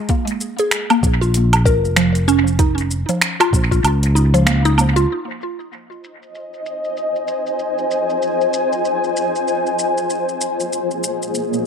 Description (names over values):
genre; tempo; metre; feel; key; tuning
organic downtempo; 96 BPM; 4/4; swing 60% on 16ths; Bb minor; A4 = 442 Hz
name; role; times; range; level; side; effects
mallet-like synth pluck; arpeggios; 0.0-5.1 s; F3 to Bb4; -19 LUFS; equal; chorus, phaser, tape echo
deep house drum kit; drums; 0.1-11.6 s; finger snaps, hi-hat, shaker, woodblock; -20 LUFS; right 1 dB; low-pass filter on perc, low-pass filter on hats, low-pass filter on snare, dub echo
electronic kick drum; drums; 0.1-3.8 s; none; -18 LUFS; equal; none
sustaining fretless electric bass; bass; 1.0-5.1 s; F1 to Db2; -16 LUFS; equal; sidechain pumping
granular cloud pad; sustained chords; 6.4-11.7 s; Bb3 to Ab5; -18 LUFS; left 2 dB; built-in reverb, sidechain pumping
room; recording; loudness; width
moderate spring reverb, RT60 1.2 s; echo-heavy mix; -15 LUFS; side -7 dB against mid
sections
0.0-5.1 A section; 5.1-11.7 B section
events
filter sweep on drum 5.1-11.7; filter sweep on ambient pad 5.1-11.7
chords
0.1 Bbm; 5.1 Fm7; 10.1 Bbm7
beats
| 0.09 0.72 1.34 1.97 | 2.59 3.22 3.84 4.47 | 5.09 5.72 6.34 6.97 | 7.59 8.22 8.84 9.47 | 10.09 10.72 11.34